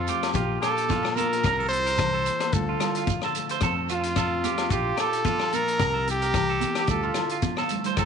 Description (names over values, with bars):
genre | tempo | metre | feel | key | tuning
highlife guitar band | 110 BPM | 4/4 | swing 54% on 16ths | unclear | A4 = 441 Hz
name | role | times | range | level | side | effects
clear trumpet | melody | 0.0-7.4 s | F4 to C5 | -26 LUFS | equal | none
picked steel-string acoustic guitar | accompaniment | 0.0-8.1 s | F2 to A4 | -32 LUFS | left 13 dB | none
clean electric guitar | arpeggios | 0.0-8.1 s | F4 to C5 | -29 LUFS | right 12 dB | spring reverb, slapback echo
fingered electric bass | bass | 0.0-8.1 s | Bb1 to F2 | -31 LUFS | equal | none
vintage drum kit | drums | 0.1-8.1 s | hi-hat, kick drum, rim click | -31 LUFS | left 4 dB | none
shekere | percussion | 0.1-8.1 s | none | -34 LUFS | right 7 dB | none
agogo bells | percussion | 0.2-8.1 s | none | -36 LUFS | left 18 dB | none
congas | percussion | 0.3-8.1 s | none | -34 LUFS | right 17 dB | none
room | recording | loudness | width
light reverb, small room ambience | 1960s-style stereo with parts hard left and right, nothing above 11.0 kHz | -22 LUFS | side -6 dB against mid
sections
0.0-8.1 A section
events
drum fill 7.6-8.0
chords
0.4 Bb; 1.4 C7; 2.5 Dmadd9; 3.6 F; 4.7 Bb; 5.8 C7; 6.9 Dmadd9